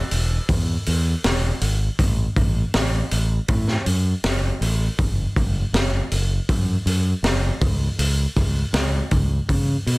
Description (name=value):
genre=quiet-loud alternative rock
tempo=80 BPM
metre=4/4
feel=straight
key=unclear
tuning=A4 = 440 Hz
part: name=growling fingered electric bass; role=bass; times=0.1-10.0 s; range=E1 to C#3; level=-21 LUFS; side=equal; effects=overdrive
part: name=raw garage drum kit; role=drums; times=0.1-10.0 s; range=hi-hat, kick drum, snare drum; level=-22 LUFS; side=equal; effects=none
room=little or no reverb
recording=dense, heavily limited modern master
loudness=-19 LUFS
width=side -23 dB against mid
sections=0.0-10.0 A section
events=none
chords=none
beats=0.49 1.24 | 1.99 2.74 3.49 4.24 | 4.99 5.74 6.49 7.24 | 7.99 8.74 9.49